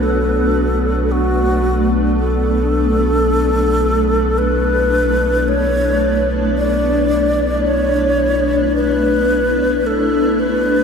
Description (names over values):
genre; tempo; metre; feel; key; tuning
ambient; free time; none; none; B minor; A4 = 440 Hz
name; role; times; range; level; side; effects
breathy wooden-headed alto flute; melody; 0.0-10.8 s; F#4 to D5; -17 LUFS; equal; tape echo
granular cloud pad; sustained chords; 0.0-10.8 s; A3 to B4; -18 LUFS; left 1 dB; built-in reverb
warm sub bass; bass; 0.0-10.8 s; B1; -21 LUFS; equal; none
room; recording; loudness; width
wet huge ambient reverb, RT60 8.3 s; in a vast, echoing space; -14 LUFS; side -6 dB against mid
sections
0.0-10.8 A section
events
none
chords
0.0 Bm7